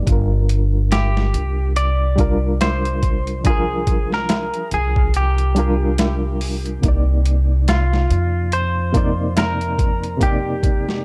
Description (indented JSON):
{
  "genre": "trip hop",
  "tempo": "71 BPM",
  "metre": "4/4",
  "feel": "swing 58% on 16ths",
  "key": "G phrygian",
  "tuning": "A4 = 440 Hz",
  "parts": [
    { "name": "barky reed electric piano", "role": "accompaniment", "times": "0.0-11.0 s", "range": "C3 to D5", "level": "-27 LUFS", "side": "equal", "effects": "overdrive, fast tremolo, low-pass filter" },
    { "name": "upright bass", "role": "bass", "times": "0.0-11.0 s", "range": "G1 to F2", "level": "-22 LUFS", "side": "equal", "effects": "none" },
    { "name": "boom bap sampler-style drum kit", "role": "drums", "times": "0.1-11.0 s", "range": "hi-hat, kick drum, snare drum", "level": "-22 LUFS", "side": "equal", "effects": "overdrive" },
    { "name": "semi-hollow electric guitar", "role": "melody", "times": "0.9-11.0 s", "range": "F4 to D5", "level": "-26 LUFS", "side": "equal", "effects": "tape echo" },
    { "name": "tabla", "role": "percussion", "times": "0.9-9.6 s", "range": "none", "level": "-34 LUFS", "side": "equal", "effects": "none" }
  ],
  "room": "little or no reverb",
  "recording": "dark, warm production",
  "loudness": "-18 LUFS",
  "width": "mono",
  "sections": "0.0-11.0 A section",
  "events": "none",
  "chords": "0.1 Gm7; 6.8 Cm9"
}